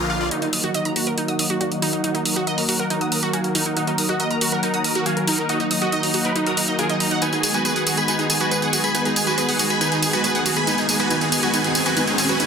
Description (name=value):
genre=uplifting trance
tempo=139 BPM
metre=4/4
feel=straight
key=Eb minor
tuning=A4 = 440 Hz
part: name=big supersaw lead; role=melody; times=0.0-12.5 s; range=Eb4 to Cb6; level=-24 LUFS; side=left 1 dB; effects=low-pass filter, ping-pong delay
part: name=lush unison pad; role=sustained chords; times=0.0-12.5 s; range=D3 to Gb4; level=-24 LUFS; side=equal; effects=chorus, vintage 12-bit sampler grit
part: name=noise sweep and riser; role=sound effects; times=0.0-0.3, 9.0-12.5 s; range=none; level=-29 LUFS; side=equal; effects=none
part: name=wide unison pluck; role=arpeggios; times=0.1-12.4 s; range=Eb4 to Eb6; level=-25 LUFS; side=right 3 dB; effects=ping-pong delay
part: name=electronic hi-hat and tambourine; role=drums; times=0.3-12.5 s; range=none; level=-23 LUFS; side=right 1 dB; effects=overdrive, high-pass filter on hats, high-pass filter on perc
room=moderate digital room reverb, RT60 0.9 s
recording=dense, heavily limited modern master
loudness=-18 LUFS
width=side -6 dB against mid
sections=0.3-12.5 A section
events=noise sweep 0.0-0.3; build-up 0.3-12.5; filter sweep on supersaw synth 0.3-12.5; riser 9.0-12.5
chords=0.3 Ebm; 7.2 Abm7